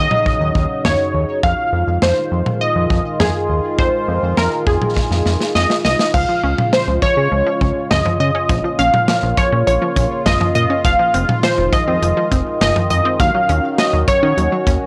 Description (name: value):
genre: synth-pop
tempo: 102 BPM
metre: 4/4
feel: straight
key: unclear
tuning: A4 = 440 Hz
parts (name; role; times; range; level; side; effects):
- funky polysynth comp; melody; 0.0-14.9 s; Ab4 to F5; -20 LUFS; equal; chorus, tape echo
- sweeping resonant pad; sustained chords; 0.0-14.9 s; Db3 to Gb4; -26 LUFS; equal; chorus, phaser
- fat analog bass; bass; 0.0-14.8 s; F1 to Eb3; -21 LUFS; equal; tube saturation
- modern studio drum kit; drums; 0.1-14.8 s; crash cymbal, hi-hat, kick drum, snare drum, toms; -22 LUFS; equal; none
- unison pluck; arpeggios; 6.1-14.8 s; F3 to Db4; -26 LUFS; equal; tape echo
room: little or no reverb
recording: dry, gritty hardware recording, cassette tape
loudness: -16 LUFS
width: mono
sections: 0.0-6.1 A section; 6.1-14.9 B section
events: drum fill 5.0-6.1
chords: 0.0 Ebm7; 1.4 Fm7; 6.1 Db; 8.5 Bbm; 10.8 Fm7; 13.2 Ebm7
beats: 0.26 0.85 | 1.43 2.02 2.61 3.20 | 3.79 4.38 4.96 5.55 | 6.14 6.73 7.32 7.91 | 8.49 9.08 9.67 10.26 | 10.85 11.43 12.02 12.61 | 13.20 13.79 14.38